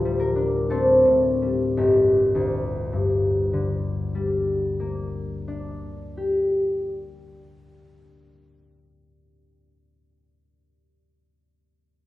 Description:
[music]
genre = classical, solo harp piece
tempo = 55 BPM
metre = 3/4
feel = rubato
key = G minor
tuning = A4 = 438 Hz
[part]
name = concert harp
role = solo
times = 0.0-9.8 s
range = G1 to C5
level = -20 LUFS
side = left 1 dB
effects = none
[sound]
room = moderate recital hall reverb, RT60 1.5 s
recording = recorded in a church or concert hall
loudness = -20 LUFS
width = side -16 dB against mid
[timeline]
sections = 0.0-1.8 A section; 1.8-8.3 B section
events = slowing down 0.0-1.8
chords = 0.0 D7sus4; 1.8 Gmadd9

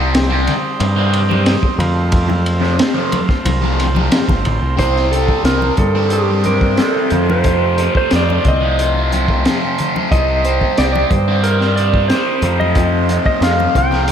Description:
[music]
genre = psychedelic rock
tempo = 90 BPM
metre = 4/4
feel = straight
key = C dorian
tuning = A4 = 442 Hz
[part]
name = overdriven combo organ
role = sustained chords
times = 0.0-14.1 s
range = G3 to C5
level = -24 LUFS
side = right 3 dB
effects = spring reverb
[part]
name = fuzz guitar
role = riff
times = 0.0-14.1 s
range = F2 to C4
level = -19 LUFS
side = left 1 dB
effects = distortion, phaser
[part]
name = growling picked electric bass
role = bass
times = 0.0-14.1 s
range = G1 to G2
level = -17 LUFS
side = equal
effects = overdrive
[part]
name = crunchy breakbeat drum kit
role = drums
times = 0.1-14.1 s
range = hi-hat, kick drum, ride cymbal, snare drum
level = -18 LUFS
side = equal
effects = none
[part]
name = congas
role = percussion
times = 0.5-14.1 s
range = none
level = -26 LUFS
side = left 3 dB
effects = none
[part]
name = clean lap steel guitar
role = melody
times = 4.8-14.1 s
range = G4 to G5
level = -18 LUFS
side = right 2 dB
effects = ping-pong delay
[sound]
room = moderate lush hall reverb, RT60 2.0 s, studio reverb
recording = dreamy mix soaked in reverb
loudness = -12 LUFS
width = side -8 dB against mid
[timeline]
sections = 0.0-4.8 A section; 4.8-14.1 B section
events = none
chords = 0.0 Cm; 1.8 F; 4.8 Cm; 7.1 F; 10.1 Cm; 12.4 F

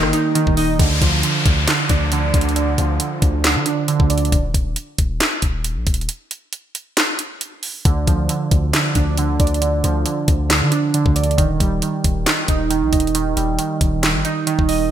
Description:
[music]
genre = hip hop, trap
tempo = 136 BPM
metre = 4/4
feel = half-time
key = D phrygian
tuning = A4 = 440 Hz
[part]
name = glassy digital keys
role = accompaniment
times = 0.0-4.3, 7.9-14.9 s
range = D3 to Eb5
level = -20 LUFS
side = right 4 dB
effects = chorus, low-pass filter
[part]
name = airy breathy pad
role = sustained chords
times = 0.0-0.8 s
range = Eb4 to Bb5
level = -34 LUFS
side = left 1 dB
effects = none
[part]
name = mellow electric guitar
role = arpeggios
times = 0.0-0.8 s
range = Eb3 to Eb4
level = -22 LUFS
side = left 4 dB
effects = low-pass filter, ping-pong delay
[part]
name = long sustained 808-style bass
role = bass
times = 0.0-14.9 s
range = Eb1 to D3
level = -21 LUFS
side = left 1 dB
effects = none
[part]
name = trap drum kit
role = drums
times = 0.0-14.8 s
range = handclaps, hi-hat, kick drum, rim click, snare drum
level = -19 LUFS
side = equal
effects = gated reverb
[part]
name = downlifter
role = sound effects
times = 0.8-4.3 s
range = none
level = -24 LUFS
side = left 2 dB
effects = none
[sound]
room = light reverb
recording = bright 1980s-style digital production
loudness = -16 LUFS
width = side -10 dB against mid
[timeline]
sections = 0.8-14.9 A section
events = filter sweep 0.8-14.9; break 4.3-7.9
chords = 0.0 Eb; 0.8 Dm; 4.3 Eb5; 7.9 Dm; 11.4 Eb

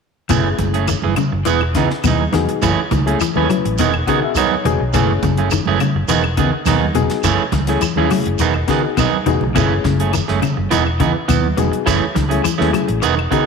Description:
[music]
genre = afrobeat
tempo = 104 BPM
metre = 4/4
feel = straight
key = F# dorian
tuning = A4 = 443 Hz
[part]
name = barky reed electric piano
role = accompaniment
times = 0.3-13.5 s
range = A3 to F#5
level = -22 LUFS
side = left 14 dB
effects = overdrive
[part]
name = clean electric guitar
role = arpeggios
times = 0.3-13.5 s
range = B2 to F#3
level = -21 LUFS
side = left 9 dB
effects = ensemble chorus
[part]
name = electric guitar at the edge of break-up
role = stabs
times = 0.3-13.5 s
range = D#3 to G#4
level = -19 LUFS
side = right 10 dB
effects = vibrato effect
[part]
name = fingered electric bass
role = bass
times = 0.3-13.3 s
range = E1 to E2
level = -20 LUFS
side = equal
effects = none
[part]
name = tight funk drum kit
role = drums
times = 0.3-13.5 s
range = hi-hat, kick drum, snare drum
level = -26 LUFS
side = left 1 dB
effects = none
[part]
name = claves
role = percussion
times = 0.3-13.3 s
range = none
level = -30 LUFS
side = left 14 dB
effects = none
[part]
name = congas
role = percussion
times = 0.3-13.2 s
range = none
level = -24 LUFS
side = right 10 dB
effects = none
[part]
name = shekere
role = percussion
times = 0.3-13.5 s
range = none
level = -28 LUFS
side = right 6 dB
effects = none
[sound]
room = moderate echo chamber reverb, RT60 1.7 s, studio reverb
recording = 1960s-style stereo with parts hard left and right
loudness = -14 LUFS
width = side -5 dB against mid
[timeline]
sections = 0.3-13.5 A section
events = reed electric piano fill 3.8-4.9, 13.0-13.5; drum fill 9.0-9.6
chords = 0.3 F#m9; 1.5 Emaj7; 2.6 F#m9; 3.8 Emaj7; 4.9 F#m9; 6.1 Emaj7; 7.2 F#m9; 8.4 Emaj7; 9.6 F#m9; 10.7 Emaj7; 11.9 F#m9

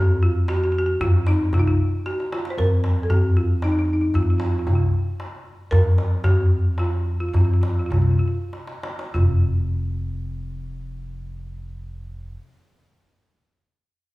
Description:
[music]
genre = Arabic maqam ensemble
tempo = 91-115 BPM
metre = 3/4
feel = straight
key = F maqam hijaz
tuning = A4 = 440 Hz
[part]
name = folk marimba with medium hard mallets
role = melody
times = 0.0-12.3 s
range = Eb4 to C5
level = -26 LUFS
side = right 1 dB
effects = none
[part]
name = upright bass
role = bass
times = 0.0-12.3 s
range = F1 to F2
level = -23 LUFS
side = equal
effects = none
[part]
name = darbuka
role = percussion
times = 0.2-9.5 s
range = none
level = -21 LUFS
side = left 1 dB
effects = none
[sound]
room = wet recital hall reverb, RT60 1.5 s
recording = small room ambience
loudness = -18 LUFS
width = side -20 dB against mid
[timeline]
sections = 0.0-9.1 A section; 9.1-13.1 B section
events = drum fill 2.0-2.6, 8.5-9.1; slowing down 5.7-9.1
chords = none

